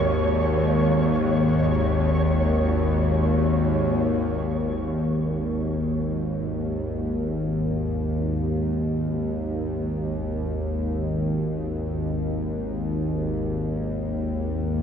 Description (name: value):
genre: dark ambient drone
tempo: free time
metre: none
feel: none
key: unclear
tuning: A4 = 440 Hz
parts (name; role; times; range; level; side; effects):
- bowed-like drone; drone; 0.0-14.8 s; G#1 to D#2; -22 LUFS; equal; built-in reverb
- flickering grainy texture; texture; 0.0-4.5 s; C#5; -30 LUFS; right 1 dB; built-in reverb
room: wet huge ambient reverb, RT60 8.6 s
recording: cassette tape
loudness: -22 LUFS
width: side -8 dB against mid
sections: 0.0-4.5 A section; 4.5-14.8 B section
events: none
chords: 0.0 G#5